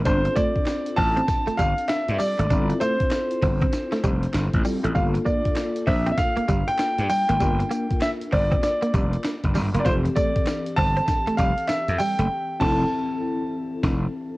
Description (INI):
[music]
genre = R&B, new jack swing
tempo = 98 BPM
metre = 4/4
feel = swing 63% on 16ths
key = G dorian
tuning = A4 = 441 Hz
[part]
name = mellow tine electric piano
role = accompaniment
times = 0.0-14.4 s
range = E3 to Bb4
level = -30 LUFS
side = left 2 dB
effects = ensemble chorus, cassette tape
[part]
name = direct-recorded clean electric guitar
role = riff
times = 0.0-12.3 s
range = G3 to F4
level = -29 LUFS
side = right 2 dB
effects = analog chorus, cassette tape
[part]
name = gritty slap bass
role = bass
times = 0.0-14.1 s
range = F1 to G2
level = -24 LUFS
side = equal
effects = overdrive
[part]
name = clear concert grand piano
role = melody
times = 0.1-14.4 s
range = C5 to A5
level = -25 LUFS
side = equal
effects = cassette tape
[part]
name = breakbeat sampler-style drum kit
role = drums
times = 0.1-14.0 s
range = crash cymbal, handclaps, hi-hat, kick drum, snare drum, tambourine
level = -26 LUFS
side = equal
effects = vintage 12-bit sampler grit
[sound]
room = light reverb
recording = home recording on cassette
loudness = -20 LUFS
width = side -20 dB against mid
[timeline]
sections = 0.0-14.4 A section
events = band accent 12.3-14.4; break 13.5-14.4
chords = 0.1 Dm7/G; 5.0 Gm7; 9.9 Fmaj7